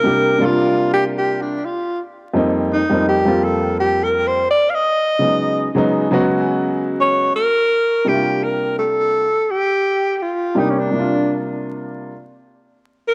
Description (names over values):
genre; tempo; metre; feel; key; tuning
hip hop; 84 BPM; 4/4; swing 57% on 16ths; unclear; A4 = 440 Hz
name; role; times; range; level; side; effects
breathy alto saxophone; melody; 0.0-13.1 s; Db4 to F5; -19 LUFS; equal; cassette tape
warm upright piano; accompaniment; 0.0-12.2 s; F2 to G4; -21 LUFS; equal; cassette tape
room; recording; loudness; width
moderate spring reverb, RT60 2.8 s; home recording on cassette, vinyl crackle; -18 LUFS; mono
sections
0.0-8.1 A section; 8.1-13.1 B section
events
alto saxophone solo 0.0-8.1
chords
0.0 C9sus4; 2.4 F9sus4; 5.2 Db9sus4; 8.1 C9sus4